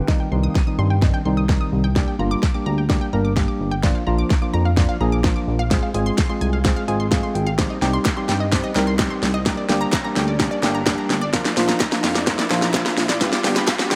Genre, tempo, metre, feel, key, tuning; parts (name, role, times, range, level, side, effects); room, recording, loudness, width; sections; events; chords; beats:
dance-pop; 128 BPM; 4/4; straight; C minor; A4 = 440 Hz
tine electric piano; accompaniment; 0.1-14.0 s; Eb3 to G5; -26 LUFS; equal; sidechain pumping
unison pluck; arpeggios; 0.1-14.0 s; Bb4 to Eb7; -32 LUFS; equal; sidechain pumping, delay
pop drum kit; drums; 0.1-14.0 s; hi-hat, kick drum, shaker, snare drum; -22 LUFS; equal
riser; sound effects; 6.6-14.0 s; -34 LUFS; equal
chorused synth bass; bass; 0.3-14.0 s; G1 to G2; -25 LUFS; equal; sidechain pumping
group handclap; percussion; 8.1-13.8 s; -34 LUFS; equal
light reverb, digital ambience; high-pass filter; -20 LUFS; mono
0.1-14.0 A section
build-up 0.1-14.0; drum fill 0.1-14.0; filter sweep 0.1-14.0; tine electric piano fill 6.9-7.6
0.1 Cm; 2.0 Gm; 3.8 Bb; 5.7 Fm/Ab; 7.6 Cm; 9.5 Gm; 11.3 Bb; 13.2 G
| 0.09 0.55 1.02 1.49 | 1.96 2.43 2.90 3.37 | 3.83 4.30 4.77 5.24 | 5.71 6.18 6.65 7.12 | 7.58 8.05 8.52 8.99 | 9.46 9.93 10.40 10.87 | 11.34 11.80 12.27 12.74 | 13.21 13.68